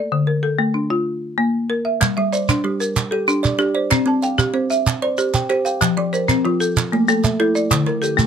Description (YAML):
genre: southern african traditional, mbira-style interlocking cycle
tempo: 126 BPM (dotted quarters)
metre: 12/8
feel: straight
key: G dorian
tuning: A4 = 440 Hz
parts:
  - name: folk marimba with hard mallets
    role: arpeggios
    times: 0.0-8.3 s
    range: D3 to A5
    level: -18 LUFS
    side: left 2 dB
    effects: none
  - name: group handclap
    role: percussion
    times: 2.0-8.3 s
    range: none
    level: -25 LUFS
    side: right 5 dB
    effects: none
  - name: shekere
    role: percussion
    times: 2.0-8.3 s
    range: none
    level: -21 LUFS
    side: right 5 dB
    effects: none
  - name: kalimba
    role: arpeggios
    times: 2.2-8.3 s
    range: D3 to G5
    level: -22 LUFS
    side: right 4 dB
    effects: none
room: little or no reverb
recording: close, detailed microphones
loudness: -16 LUFS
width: side -8 dB against mid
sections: 0.0-8.3 A section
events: none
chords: 0.1 Dm; 1.1 Bb; 2.0 Gm; 3.9 C; 5.8 F; 6.8 A5; 7.7 D5